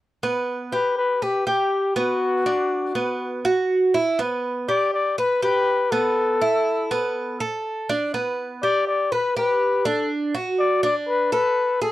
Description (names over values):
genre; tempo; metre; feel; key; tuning
latin; 122 BPM; 4/4; straight; unclear; A4 = 440 Hz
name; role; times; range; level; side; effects
Cuban tres; arpeggios; 0.2-11.9 s; B3 to B4; -23 LUFS; right 3 dB; none
breathy trumpet; melody; 0.7-11.9 s; F#4 to D5; -21 LUFS; left 3 dB; none
room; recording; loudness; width
light reverb; dry, close 1970s-style studio recording; -20 LUFS; side -15 dB against mid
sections
0.2-11.9 A section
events
none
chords
0.2 G; 2.2 Bm; 6.2 Asus2; 8.1 G; 10.1 D